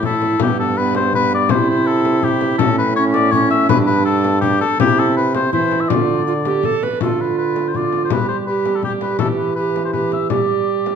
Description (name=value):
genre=classical, renaissance-style consort dance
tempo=164 BPM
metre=3/4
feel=straight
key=D dorian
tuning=A4 = 442 Hz
part: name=warm oboe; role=melody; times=0.0-11.0 s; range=G4 to E5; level=-19 LUFS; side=left 6 dB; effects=none
part: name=bright bass recorder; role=second line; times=0.0-11.0 s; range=B3 to B4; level=-19 LUFS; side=right 6 dB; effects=none
part: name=warm trombone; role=bass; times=0.0-11.0 s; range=G2 to G3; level=-21 LUFS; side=right 2 dB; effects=none
part: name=frame drum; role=percussion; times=0.0-11.0 s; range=none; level=-22 LUFS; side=left 8 dB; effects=none
room=wet recital hall reverb, RT60 1.4 s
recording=dark, warm production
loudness=-14 LUFS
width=side -7 dB against mid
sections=0.0-7.0 A section; 7.0-11.0 B section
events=none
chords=0.4 G; 1.5 C; 2.6 A; 3.7 G5; 4.8 C; 5.9 Dm; 8.1 G; 9.2 Em; 10.3 G5